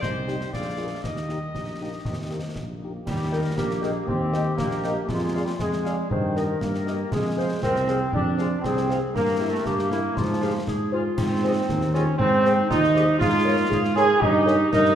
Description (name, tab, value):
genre	military-style march for wind band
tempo	118 BPM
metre	2/4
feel	straight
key	Eb major, Ab major from 11.2 s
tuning	A4 = 438 Hz
part	warm trumpet section	melody	0.0-14.6 s	C5 to G5	-38 LUFS	left 2 dB	none
part	mellow woodwind section	second line	0.0-14.9 s	Eb4 to F5	-30 LUFS	left 3 dB	none
part	warm trombone section	sustained chords	0.0-14.9 s	Eb3 to Ab4	-24 LUFS	right 2 dB	none
part	mellow tuba	bass	0.0-14.9 s	Bb1 to Ab2	-26 LUFS	right 1 dB	none
part	concert snare drum, concert bass drum and clash cymbals	drums	0.0-14.9 s	none	-32 LUFS	left 1 dB	none
part	warm French horn section	accompaniment	0.3-14.6 s	G3 to Eb5	-32 LUFS	left 3 dB	none
room	wet scoring stage reverb, RT60 1.9 s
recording	lossy compression artefacts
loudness	-21 LUFS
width	side -9 dB against mid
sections	0.0-3.1 A section; 3.1-14.9 B section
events	none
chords	0.0 Cm; 0.5 Bb7; 1.0 Eb; 5.1 Ddim/F; 6.1 Eb/G; 7.1 Fm; 9.1 Edim/G; 10.2 Fm/Ab; 11.2 Ab; 13.2 Bbm7/Ab; 14.2 Eb7/G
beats	| 0.02 0.53 | 1.03 1.54 | 2.05 2.56 | 3.06 3.57 | 4.08 4.59 | 5.09 5.60 | 6.11 6.61 | 7.12 7.63 | 8.13 8.64 | 9.15 9.65 | 10.16 10.67 | 11.18 11.68 | 12.19 12.70 | 13.20 13.71 | 14.21 14.72